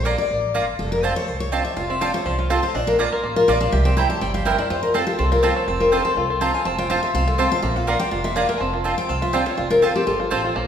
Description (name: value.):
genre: bluegrass.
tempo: 246 BPM.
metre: 4/4.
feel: straight.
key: F major.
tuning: A4 = 442 Hz.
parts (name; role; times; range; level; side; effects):
picked steel-string acoustic guitar; accompaniment; 0.0-10.5 s; F4 to Bb5; -22 LUFS; left 3 dB; none.
mandolin; stabs; 0.0-10.4 s; Bb3 to Bb5; -24 LUFS; right 3 dB; none.
upright bass; bass; 0.0-10.7 s; F1 to F2; -25 LUFS; right 1 dB; none.
bluegrass banjo; melody; 1.8-10.7 s; F3 to Bb4; -24 LUFS; equal; none.
room: wet recital hall reverb, RT60 1.7 s.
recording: recorded in a church or concert hall.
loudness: -18 LUFS.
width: side -8 dB against mid.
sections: 0.0-5.7 A section; 5.7-10.7 A section.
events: steel-string acoustic guitar solo 0.0-10.7.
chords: 0.0 Bb; 0.8 F; 2.7 Bb; 3.7 C; 4.7 F; 7.6 Bb; 8.6 F.